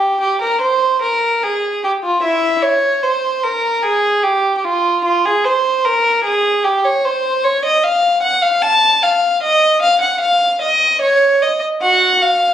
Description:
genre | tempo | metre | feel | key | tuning
classical, baroque-style suite movement for unaccompanied violin | 75 BPM | 3/4 | rubato | unclear | A4 = 440 Hz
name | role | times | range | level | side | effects
warm violin | solo | 0.0-12.5 s | E4 to A5 | -12 LUFS | equal | none
room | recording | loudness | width
light reverb | recorded on a phone in the room, club reverb | -12 LUFS | side -10 dB against mid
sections
0.0-12.5 A section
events
none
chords
none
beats
0.61 1.43 | 2.23 3.03 3.83 | 4.64 5.44 6.24 | 7.04 7.83 8.63 | 9.42 10.22 11.02 | 11.82

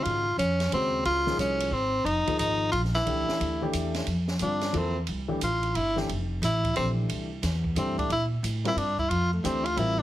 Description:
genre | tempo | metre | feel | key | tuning
modal jazz | 179 BPM | 3/4 | swing 64% on 8ths | F major from 4.1 s | A4 = 441 Hz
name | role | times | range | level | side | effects
bright tenor saxophone | melody | 0.0-10.0 s | A3 to F4 | -27 LUFS | equal | none
warm baby grand piano | accompaniment | 0.0-10.0 s | Db3 to C5 | -32 LUFS | left 2 dB | none
upright bass | bass | 0.1-10.0 s | F1 to Bb2 | -30 LUFS | equal | none
open jazz drum kit | drums | 0.1-9.9 s | hi-hat, kick drum, ride cymbal, snare drum | -36 LUFS | right 2 dB | none
room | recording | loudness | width
light reverb | heavily compressed radio sound | -25 LUFS | side -13 dB against mid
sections
0.0-4.1 A section; 4.1-10.0 B section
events
tenor saxophone solo 4.1-10.0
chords
0.0 Dbmaj9; 3.1 C69; 4.1 Fmaj9; 8.1 Bbmaj9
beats
| 0.05 0.38 0.72 | 1.05 1.39 1.72 | 2.06 2.39 2.73 | 3.06 3.40 3.73 | 4.07 4.40 4.74 | 5.08 5.41 5.75 | 6.08 6.42 6.75 | 7.09 7.42 7.76 | 8.10 8.43 8.77 | 9.10 9.44 9.77

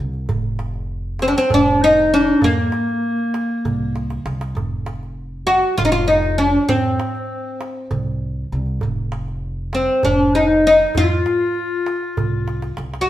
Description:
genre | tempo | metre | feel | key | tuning
Turkish makam ensemble | 197 BPM (eighths) | 7/8 | straight | F makam hicaz | A4 = 440 Hz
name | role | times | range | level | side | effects
upright bass | bass | 0.0-13.0 s | F1 to F2 | -24 LUFS | equal | none
darbuka | percussion | 0.1-13.1 s | none | -26 LUFS | right 3 dB | none
oud | melody | 1.2-13.1 s | Bb3 to Gb4 | -16 LUFS | equal | none
warm clarinet | second line | 1.2-12.8 s | Bb3 to Gb4 | -22 LUFS | left 3 dB | none
room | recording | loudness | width
wet stone room reverb, RT60 0.9 s | band playing live in one room | -16 LUFS | side -13 dB against mid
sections
0.0-13.1 A section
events
drum fill 3.9-4.6, 12.5-13.1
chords
none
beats
| 0.29 0.59 0.90 1.21 1.51 1.81 2.12 | 2.42 2.73 3.04 3.34 3.64 3.95 4.25 | 4.56 4.86 5.17 5.47 5.78 6.08 6.39 | 6.69 7.00 7.30 7.61 7.91 8.21 8.52 | 8.82 9.13 9.43 9.74 10.04 10.35 10.65 | 10.95 11.26 11.56 11.87 12.17 12.48 12.78

